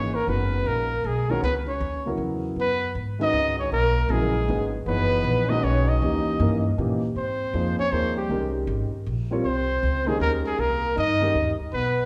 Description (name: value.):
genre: modal jazz.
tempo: 157 BPM.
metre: 3/4.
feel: swing 64% on 8ths.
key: F# mixolydian, Ab major from 7.1 s.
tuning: A4 = 440 Hz.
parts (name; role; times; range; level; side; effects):
warm trumpet; melody; 0.0-12.1 s; G4 to D#5; -28 LUFS; equal; none.
mellow trombone; second line; 0.0-12.1 s; G3 to D#4; -33 LUFS; equal; none.
warm concert grand piano; accompaniment; 0.0-11.3 s; C#3 to C#5; -31 LUFS; equal; none.
upright bass; bass; 0.0-12.1 s; F#1 to A#2; -29 LUFS; equal; none.
room: wet large studio reverb, RT60 1.3 s.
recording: heard from further back in the room.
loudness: -24 LUFS.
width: mono.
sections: 0.0-7.1 A section; 7.1-12.1 B section.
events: none.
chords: 0.0 F#9sus4; 6.0 D#7b9; 7.1 Abmaj9.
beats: | 0.28 0.66 1.04 | 1.43 1.81 2.19 | 2.57 2.95 3.33 | 3.71 4.10 4.48 | 4.86 5.24 5.62 | 6.00 6.39 6.77 | 7.15 7.53 7.91 | 8.29 8.68 9.06 | 9.44 9.82 10.20 | 10.58 10.96 11.35 | 11.73.